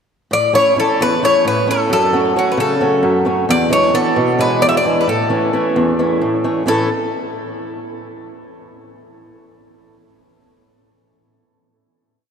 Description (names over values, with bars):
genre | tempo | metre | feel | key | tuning
greek folk, Greek bouzouki band | 264 BPM (eighths) | 7/8 | straight | A major | A4 = 442 Hz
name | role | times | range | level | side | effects
Greek bouzouki | melody | 0.3-6.9 s | F#4 to E5 | -16 LUFS | left 1 dB | none
fingerpicked swing-style acoustic guitar | accompaniment | 0.3-6.9 s | E2 to E4 | -17 LUFS | right 1 dB | none
room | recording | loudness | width
wet cathedral reverb, RT60 5.4 s | in a vast, echoing space | -13 LUFS | side -7 dB against mid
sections
0.3-6.7 A section; 6.7-8.3 final chord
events
none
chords
0.3 A; 1.9 F#m; 3.5 E7; 5.1 A